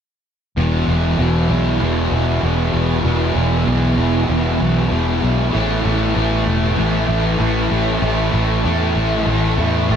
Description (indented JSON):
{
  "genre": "rock",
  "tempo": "96 BPM",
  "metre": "4/4",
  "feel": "straight",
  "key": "unclear",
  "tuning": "A4 = 440 Hz",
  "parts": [
    { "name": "fuzz guitar", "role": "riff", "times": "0.6-10.0 s", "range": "E2 to A3", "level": "-17 LUFS", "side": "equal", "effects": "distortion, wide subtle chorus" },
    { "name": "vintage muted fingered electric bass", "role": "bass", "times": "0.6-10.0 s", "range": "E1 to E2", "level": "-19 LUFS", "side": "equal", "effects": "none" }
  ],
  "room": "wet huge ambient reverb, RT60 7.3 s",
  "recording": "dreamy mix soaked in reverb",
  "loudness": "-15 LUFS",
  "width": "side -8 dB against mid",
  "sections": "0.6-10.0 A section",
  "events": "none",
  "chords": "0.6 E5; 5.5 A5",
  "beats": "| 0.57 1.19 1.81 2.43 | 3.05 3.67 4.29 4.91 | 5.54 6.16 6.78 7.40 | 8.03 8.65 9.27 9.90"
}